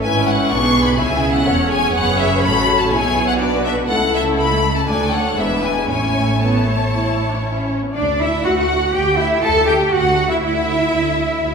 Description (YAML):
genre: quick classical-period movement for string orchestra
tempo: 115-127 BPM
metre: 4/4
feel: rubato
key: A major, D major from 8.0 s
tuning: A4 = 440 Hz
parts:
  - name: clear studio violin section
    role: melody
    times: 0.0-11.5 s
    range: D5 to C#6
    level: -21 LUFS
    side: left 3 dB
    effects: none
  - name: rich studio violin section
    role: second line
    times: 0.0-11.5 s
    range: E4 to A5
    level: -22 LUFS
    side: left 1 dB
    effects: none
  - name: rich studio viola section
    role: accompaniment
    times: 0.0-11.5 s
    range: G#3 to A4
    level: -21 LUFS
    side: equal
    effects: none
  - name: rich studio cello section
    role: bass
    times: 0.0-11.5 s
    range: C#2 to A4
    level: -21 LUFS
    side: right 2 dB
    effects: none
  - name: rich studio double bass section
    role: bass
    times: 0.0-11.5 s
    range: E1 to D2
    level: -24 LUFS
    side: right 2 dB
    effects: none
room: wet recital hall reverb, RT60 1.7 s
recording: recorded in a church or concert hall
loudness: -14 LUFS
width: side -6 dB against mid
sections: 0.0-8.0 A section; 8.0-11.5 B section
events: none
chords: 0.0 G#dim; 1.0 C#m7; 1.9 F#m; 2.9 Bm; 3.9 A/C#; 4.9 D; 5.4 E7; 5.9 A; 8.0 D; 8.9 Em7/D; 9.9 Dadd9